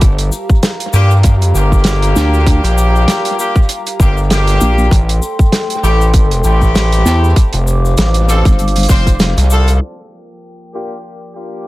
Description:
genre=glitch hop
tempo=98 BPM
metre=4/4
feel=swing 56% on 16ths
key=G minor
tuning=A4 = 440 Hz
part: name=dark analog pad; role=sustained chords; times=0.0-11.7 s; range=F4 to D6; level=-22 LUFS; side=equal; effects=chorus, sidechain pumping
part: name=gritty driven synth bass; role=bass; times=0.0-9.8 s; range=F1 to G2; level=-11 LUFS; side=equal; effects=tube saturation
part: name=electronic kick drum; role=drums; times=0.0-9.2 s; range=none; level=-10 LUFS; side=equal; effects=none
part: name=warm soul drum kit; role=drums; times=0.0-9.8 s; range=hi-hat, snare drum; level=-17 LUFS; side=right 1 dB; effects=low-pass filter on hats, low-pass filter on snare, low-pass filter on room, analog delay
part: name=cabasa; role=percussion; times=0.0-9.8 s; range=none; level=-29 LUFS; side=left 4 dB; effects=analog delay
part: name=brilliant horn section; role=stabs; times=0.9-11.7 s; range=A3 to C5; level=-19 LUFS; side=left 1 dB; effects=sidechain pumping, analog delay
part: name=vowel-sweep wobble bass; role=bass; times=2.2-9.3 s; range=F1 to E2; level=-12 LUFS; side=equal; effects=chorus
room=light reverb, studio reverb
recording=echo-heavy mix, vinyl crackle, low-pass filter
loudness=-9 LUFS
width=side -18 dB against mid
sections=0.0-9.8 A section; 9.8-11.7 B section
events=band accent 9.2-9.5; filter sweep on analog synth pad 9.8-11.7; filter sweep 9.8-11.7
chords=0.0 Gm7; 4.9 Am7; 7.4 Dm7; 9.8 Gm7

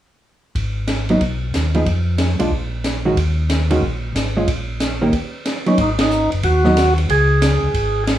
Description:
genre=soul jazz organ trio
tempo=184 BPM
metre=4/4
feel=swing 64% on 8ths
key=G# dorian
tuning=A4 = 440 Hz
part: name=mellow tonewheel organ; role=bass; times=0.6-8.2 s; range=F#1 to F2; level=-19 LUFS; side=equal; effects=slow rotary speaker
part: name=open jazz drum kit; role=drums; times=0.6-8.2 s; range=hi-hat, kick drum, ride cymbal, snare drum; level=-22 LUFS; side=equal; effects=none
part: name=hollow-body jazz guitar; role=accompaniment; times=1.1-6.8 s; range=D#3 to G#4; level=-18 LUFS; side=right 1 dB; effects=none
part: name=percussive tonewheel organ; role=melody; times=5.7-8.0 s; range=C#4 to G#4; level=-18 LUFS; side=right 1 dB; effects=slow rotary speaker
room=moderate studio reverb, RT60 0.8 s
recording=studio ambience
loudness=-16 LUFS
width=side -12 dB against mid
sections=0.6-5.8 A section; 5.8-8.2 B section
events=band accent 5.9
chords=0.6 G#m; 1.9 Fdim; 2.5 A#madd11; 3.2 D#7sus4; 4.5 A#m; 5.1 F#sus4; 5.8 G#7(no3); 7.1 C#5

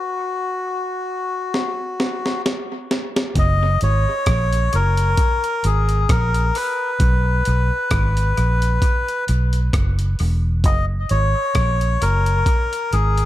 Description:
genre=roots reggae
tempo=66 BPM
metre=4/4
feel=swing 56% on 16ths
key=unclear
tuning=A4 = 440 Hz
part: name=melodica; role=melody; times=0.0-13.3 s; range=F#4 to D#5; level=-22 LUFS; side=left 2 dB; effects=tape echo
part: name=breakbeat sampler-style drum kit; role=drums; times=1.5-13.3 s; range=hi-hat, kick drum, rim click, snare drum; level=-21 LUFS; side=equal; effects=dub echo
part: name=vintage muted fingered electric bass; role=bass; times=3.4-13.3 s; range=E1 to B1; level=-18 LUFS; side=equal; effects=none
room=light reverb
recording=echo-heavy mix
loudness=-17 LUFS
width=side -14 dB against mid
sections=0.0-3.4 A section; 3.4-13.3 B section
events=break 0.0-3.4; drum fill 1.5-3.4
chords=0.0 N.C.; 3.4 F#; 7.0 B5; 10.6 F#

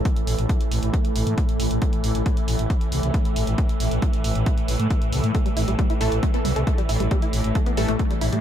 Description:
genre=driving peak-time techno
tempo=136 BPM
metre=4/4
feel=straight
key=unclear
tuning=A4 = 440 Hz
part: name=growling FM bass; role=bass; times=0.0-8.4 s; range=A1 to A2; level=-23 LUFS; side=equal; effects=sidechain pumping
part: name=swarming drone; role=drone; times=0.0-8.4 s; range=A2 to E3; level=-30 LUFS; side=equal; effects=built-in reverb, sidechain pumping
part: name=deep dark ambient pad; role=texture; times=0.0-8.4 s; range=A3 to E6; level=-29 LUFS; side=right 2 dB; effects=chorus, built-in reverb, sidechain pumping
part: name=electronic hi-hat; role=drums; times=0.1-8.4 s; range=none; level=-34 LUFS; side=right 2 dB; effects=sidechain pumping on hats, sidechain pumping on cymbals
part: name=electronic kick drum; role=drums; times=0.1-8.1 s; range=none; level=-22 LUFS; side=equal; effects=none
part: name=tight sequenced synth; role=riff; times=5.3-8.4 s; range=G3 to E4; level=-28 LUFS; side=equal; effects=chorus, phaser, overdrive, sidechain pumping, tape echo
part: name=supersaw stab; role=stabs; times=6.0-8.0 s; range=E3 to A4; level=-28 LUFS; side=equal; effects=sidechain pumping, digital delay
room=little or no reverb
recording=dark, warm production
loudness=-20 LUFS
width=side -10 dB against mid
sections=0.0-8.4 A section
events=none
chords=0.0 A5

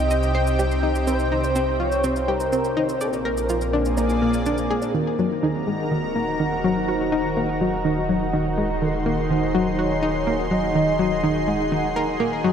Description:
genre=ambient, sequencer-driven space music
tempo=124 BPM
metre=4/4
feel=straight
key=Eb dorian from 4.9 s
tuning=A4 = 441 Hz
part: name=expressive synth lead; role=melody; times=0.0-12.4 s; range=Gb4 to Gb5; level=-28 LUFS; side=equal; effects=analog chorus, ping-pong delay
part: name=lush unison pad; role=sustained chords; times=0.0-12.5 s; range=Bb2 to C6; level=-24 LUFS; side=equal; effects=chorus
part: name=analog pluck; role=riff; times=0.0-12.5 s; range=Eb3 to Eb5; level=-24 LUFS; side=left 1 dB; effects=chorus, ping-pong delay
part: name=round analog bass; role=bass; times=0.0-12.5 s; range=Eb1 to C2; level=-29 LUFS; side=equal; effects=none
part: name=shaker and woodblock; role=percussion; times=0.1-4.9 s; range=none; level=-39 LUFS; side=right 1 dB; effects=overdrive, ping-pong delay
room=wet huge ambient reverb, RT60 7.7 s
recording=in a vast, echoing space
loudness=-20 LUFS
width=side -8 dB against mid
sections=0.0-4.9 A section; 4.9-12.5 B section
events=none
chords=0.0 Cm; 3.0 Bb7; 4.9 Ebm

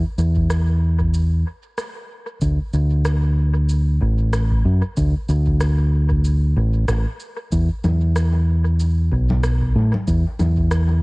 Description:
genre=ambient dub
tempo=94 BPM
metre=4/4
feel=swing 58% on 16ths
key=unclear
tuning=A4 = 440 Hz
part: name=fingered electric bass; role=bass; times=0.0-11.0 s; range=A1 to A2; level=-16 LUFS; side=equal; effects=none
part: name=electronic shaker, rim click and congas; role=drums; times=0.2-10.9 s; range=none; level=-29 LUFS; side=equal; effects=small room ambience, dub echo
part: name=electronic kick drum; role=drums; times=0.4-10.7 s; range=none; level=-26 LUFS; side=equal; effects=small room ambience
room=little or no reverb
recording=home recording on cassette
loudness=-16 LUFS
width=side -28 dB against mid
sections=0.0-11.0 A section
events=none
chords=none

